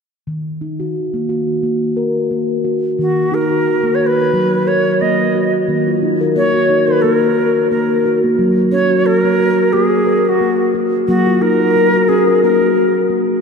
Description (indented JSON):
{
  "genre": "world meditative, meditative tuned percussion",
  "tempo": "89 BPM",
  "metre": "4/4",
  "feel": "swing 54% on 16ths",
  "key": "Eb minor",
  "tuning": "A4 = 440 Hz",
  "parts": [
    { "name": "steel tongue drum", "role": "arpeggios", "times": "0.3-13.4 s", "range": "Eb3 to Bb4", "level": "-14 LUFS", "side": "left 1 dB", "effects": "none" },
    { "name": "bright reedy Native American-style cedar flute", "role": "melody", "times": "3.0-13.1 s", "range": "Gb4 to Eb5", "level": "-16 LUFS", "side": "right 1 dB", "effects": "ping-pong delay" }
  ],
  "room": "wet cathedral reverb, RT60 5.7 s",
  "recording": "in a vast, echoing space",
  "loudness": "-12 LUFS",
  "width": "side -5 dB against mid",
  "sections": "0.3-3.0 A section; 3.0-13.4 B section",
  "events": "none",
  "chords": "0.3 Ebm; 8.4 Gb"
}